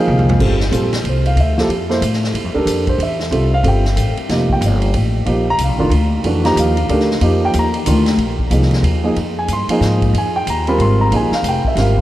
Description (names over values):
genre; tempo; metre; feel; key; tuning
modal jazz; 185 BPM; 3/4; swing 62% on 8ths; G minor; A4 = 440 Hz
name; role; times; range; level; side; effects
dark grand piano; accompaniment; 0.0-12.0 s; Eb3 to C6; -17 LUFS; right 1 dB; none
upright bass; bass; 0.1-12.0 s; F1 to A2; -16 LUFS; equal; none
vintage drum kit; drums; 0.1-12.0 s; crash cymbal, hi-hat, kick drum, ride cymbal, snare drum, toms; -24 LUFS; equal; none
room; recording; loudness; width
moderate cathedral reverb, RT60 7.3 s; in a vast, echoing space; -13 LUFS; side -14 dB against mid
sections
0.4-8.2 A section; 8.2-12.0 A section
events
drum fill 0.1-0.4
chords
0.4 G13sus4; 4.3 F13sus4; 8.2 Bb9sus4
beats
0.07 | 0.40 0.72 1.05 | 1.37 1.70 2.02 | 2.35 2.67 3.00 | 3.32 3.65 3.97 | 4.30 4.62 4.95 | 5.27 5.59 5.92 | 6.24 6.57 6.89 | 7.22 7.54 7.87 | 8.19 8.52 8.84 | 9.17 9.49 9.81 | 10.14 10.46 10.79 | 11.11 11.44 11.76